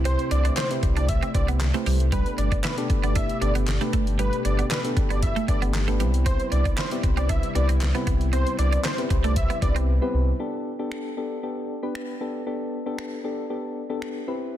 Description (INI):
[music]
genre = dance-pop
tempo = 116 BPM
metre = 4/4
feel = straight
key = G major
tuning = A4 = 442 Hz
[part]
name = chorused pulse-width pad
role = sustained chords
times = 0.0-10.4 s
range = B2 to G4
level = -33 LUFS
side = left 1 dB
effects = sidechain pumping
[part]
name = sub bass with octave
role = bass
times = 0.0-10.3 s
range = G1 to C2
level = -23 LUFS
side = equal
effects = sidechain pumping
[part]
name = wide unison lead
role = melody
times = 0.1-9.7 s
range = B4 to E5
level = -31 LUFS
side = right 1 dB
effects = sidechain pumping, digital delay
[part]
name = soft electric-piano-like synth keys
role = accompaniment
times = 0.1-14.6 s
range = B3 to D5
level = -30 LUFS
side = left 2 dB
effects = chorus, sidechain pumping
[part]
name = twelve-string electric guitar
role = riff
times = 0.1-9.9 s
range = G3 to E4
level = -32 LUFS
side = right 9 dB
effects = wide subtle chorus
[part]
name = pop drum kit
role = drums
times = 0.1-14.1 s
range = finger snaps, handclaps, hi-hat, kick drum, snare drum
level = -27 LUFS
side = equal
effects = soft clipping on snare
[sound]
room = digital ambience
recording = dense, heavily limited modern master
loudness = -22 LUFS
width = side -12 dB against mid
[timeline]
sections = 0.0-10.4 A section; 10.4-14.6 B section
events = drop 0.0-10.4; silent gap 9.9-10.4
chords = 0.0 Cmaj7; 2.1 Gadd9; 6.0 Cmaj7; 10.4 Gadd9